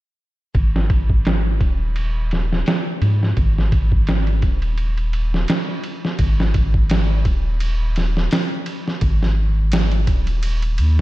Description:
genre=trip hop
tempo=85 BPM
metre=4/4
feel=swing 56% on 16ths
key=unclear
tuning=A4 = 440 Hz
part: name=round analog bass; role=bass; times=0.5-11.0 s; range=D#1 to G#2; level=-18 LUFS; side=equal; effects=none
part: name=boom bap sampler-style drum kit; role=drums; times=0.5-11.0 s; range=hi-hat, kick drum, ride cymbal, snare drum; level=-20 LUFS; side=equal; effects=low-pass filter on kick, small room ambience, low-pass filter on cymbals, low-pass filter on snare, low-pass filter on hats
room=light reverb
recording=none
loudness=-17 LUFS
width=side -17 dB against mid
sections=0.5-11.0 A section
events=none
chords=none

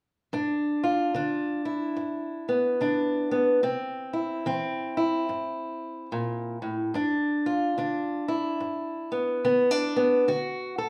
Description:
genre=acoustic country blues, solo or duo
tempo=72 BPM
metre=4/4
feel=swing 61% on 8ths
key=G mixolydian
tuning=A4 = 441 Hz
part: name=fingerpicked old ladder-braced acoustic guitar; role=solo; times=0.3-10.9 s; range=G2 to A4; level=-27 LUFS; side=equal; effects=none
room=wet large studio reverb, RT60 0.8 s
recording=band playing live in one room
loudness=-27 LUFS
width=mono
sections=0.3-10.9 A section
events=none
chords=0.3 G7; 3.6 C7; 7.0 G7; 10.3 D

